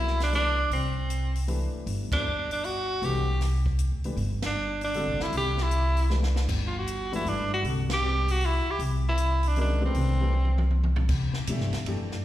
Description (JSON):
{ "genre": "modal jazz", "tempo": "156 BPM", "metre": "3/4", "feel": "swing 66% on 8ths", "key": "C lydian", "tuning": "A4 = 444 Hz", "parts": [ { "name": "clear tenor saxophone", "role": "melody", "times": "0.0-10.7 s", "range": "C4 to G4", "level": "-28 LUFS", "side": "right 1 dB", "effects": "slapback echo" }, { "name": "warm baby grand piano", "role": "accompaniment", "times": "0.0-12.2 s", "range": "B2 to E5", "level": "-34 LUFS", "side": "left 2 dB", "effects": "slapback echo" }, { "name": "upright bass", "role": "bass", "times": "0.0-12.2 s", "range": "G1 to C3", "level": "-26 LUFS", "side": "equal", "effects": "none" }, { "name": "compact cocktail drum kit", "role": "drums", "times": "0.1-12.2 s", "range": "crash cymbal, hi-hat, kick drum, ride cymbal, snare drum, toms", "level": "-35 LUFS", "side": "equal", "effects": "slapback echo" } ], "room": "light reverb", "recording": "live gig heard through the venue's PA, recital hall reverb", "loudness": "-24 LUFS", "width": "side -14 dB against mid", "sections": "0.0-11.1 A section; 11.1-12.2 B section", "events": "band accent 2.1, 4.4, 7.8; drum fill 6.1-6.5, 10.3-11.1", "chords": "0.0 Cmaj9; 11.1 Cadd9", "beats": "0.33 | 0.71 1.09 1.48 | 1.86 2.25 2.63 | 3.02 3.40 3.79 | 4.17 4.56 4.94 | 5.33 5.71 6.10 | 6.48 6.87 7.25 | 7.64 8.02 8.40 | 8.79 9.17 9.56 | 9.94 10.33 10.71 | 11.10 11.48 11.87 | 12.25" }